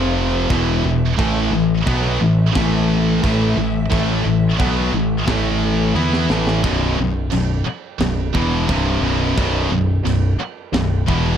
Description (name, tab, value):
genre	heavy metal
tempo	88 BPM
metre	4/4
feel	straight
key	unclear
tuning	A4 = 439 Hz
part	dark chamber string section	sustained chords	0.0-6.6 s	E3 to F5	-31 LUFS	right 1 dB	none
part	heavy high-gain guitar	riff	0.0-11.4 s	B1 to E4	-24 LUFS	right 9 dB	distortion
part	overdriven electric guitar	riff	0.0-11.4 s	B1 to E4	-22 LUFS	equal	none
part	scooped high-gain guitar	riff	0.0-11.4 s	B1 to E4	-22 LUFS	left 7 dB	distortion
part	growling picked electric bass	bass	0.0-11.4 s	B0 to E2	-21 LUFS	right 1 dB	overdrive
part	tight metal drum kit	drums	0.5-11.2 s	china cymbal, kick drum, snare drum, toms	-26 LUFS	right 1 dB	none
room	little or no reverb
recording	dark, warm production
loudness	-16 LUFS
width	side -9 dB against mid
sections	0.0-6.6 A section; 6.6-11.4 B section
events	drum fill 6.0-6.6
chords	0.5 E5; 1.2 A5; 6.6 B5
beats	0.50 | 1.18 1.86 2.55 3.23 | 3.91 4.59 5.28 5.96 | 6.64 7.32 8.01 8.69 | 9.37 10.05 10.73